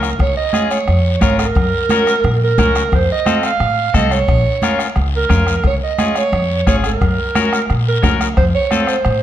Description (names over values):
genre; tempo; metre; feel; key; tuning
latin, cumbia; 176 BPM; 4/4; straight; unclear; A4 = 440 Hz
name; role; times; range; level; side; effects
bright clarinet; second line; 0.0-9.2 s; Bb4 to F5; -18 LUFS; right 4 dB; none
clean electric guitar; accompaniment; 0.0-9.0 s; C4 to Bb4; -22 LUFS; left 5 dB; none
upright bass; bass; 0.0-9.2 s; Ab1 to Bb2; -17 LUFS; equal; none
bombo; percussion; 0.0-9.2 s; none; -20 LUFS; left 1 dB; none
guiro; percussion; 0.0-9.2 s; none; -30 LUFS; left 7 dB; none
congas; percussion; 0.2-9.2 s; none; -21 LUFS; right 2 dB; none
room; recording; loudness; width
moderate large studio reverb, RT60 1.3 s; dark, warm production; -13 LUFS; side -11 dB against mid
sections
0.2-9.2 A section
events
clarinet solo 0.2-9.2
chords
0.2 Dbadd9; 1.6 Gb; 2.9 F; 4.3 Bbm; 5.6 Dbadd9; 7.0 Gb; 8.4 F